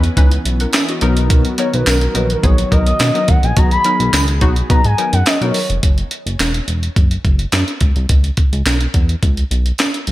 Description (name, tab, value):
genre	early-eighties boogie funk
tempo	106 BPM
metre	4/4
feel	straight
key	C# dorian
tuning	A4 = 440 Hz
part	gliding portamento lead	melody	0.0-5.8 s	A#4 to B5	-19 LUFS	left 1 dB	chorus, slapback echo
part	funky polysynth comp	accompaniment	0.0-5.6 s	E3 to F#5	-21 LUFS	left 2 dB	chorus, slapback echo
part	warm analog pad	sustained chords	0.0-5.8 s	D#3 to G#4	-26 LUFS	right 1 dB	chorus
part	chorused synth bass	bass	0.0-10.1 s	E1 to B2	-16 LUFS	equal	none
part	breakbeat sampler-style drum kit	drums	0.0-10.1 s	handclaps, hi-hat, kick drum, snare drum	-15 LUFS	equal	none
part	tambourine	percussion	0.7-9.9 s	none	-28 LUFS	right 5 dB	none
room	light reverb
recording	none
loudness	-12 LUFS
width	side -16 dB against mid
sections	0.0-5.8 A section; 5.8-10.1 B section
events	soft synth lead solo 0.0-5.8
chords	0.0 C#m9; 1.0 Bmaj7; 5.8 Esus2; 7.8 C#m7